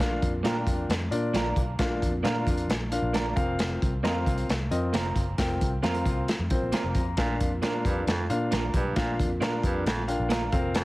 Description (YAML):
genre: uptempo 1960s-style soul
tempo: 134 BPM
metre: 4/4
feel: straight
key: Bb major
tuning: A4 = 441 Hz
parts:
  - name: warm grand piano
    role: accompaniment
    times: 0.0-10.8 s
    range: Bb2 to F6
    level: -30 LUFS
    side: left 2 dB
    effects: none
  - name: vintage muted fingered electric bass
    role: bass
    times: 0.0-10.8 s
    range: F1 to Bb2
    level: -31 LUFS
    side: equal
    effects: none
  - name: crunchy breakbeat drum kit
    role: drums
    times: 0.0-10.8 s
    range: hi-hat, kick drum, snare drum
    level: -28 LUFS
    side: equal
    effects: none
  - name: electric guitar through a small old amp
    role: stabs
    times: 0.4-10.4 s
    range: Bb3 to Bb4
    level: -34 LUFS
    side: right 4 dB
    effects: none
  - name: warm baritone saxophone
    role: riff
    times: 7.2-10.8 s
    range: F2 to Bb2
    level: -32 LUFS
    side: right 2 dB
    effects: none
room: light reverb, small room ambience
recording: heavily compressed radio sound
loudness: -24 LUFS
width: side -19 dB against mid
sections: 0.0-10.8 A section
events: grand piano fill 9.9-10.7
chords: 0.0 Bb; 3.4 Fsus4; 7.2 Bb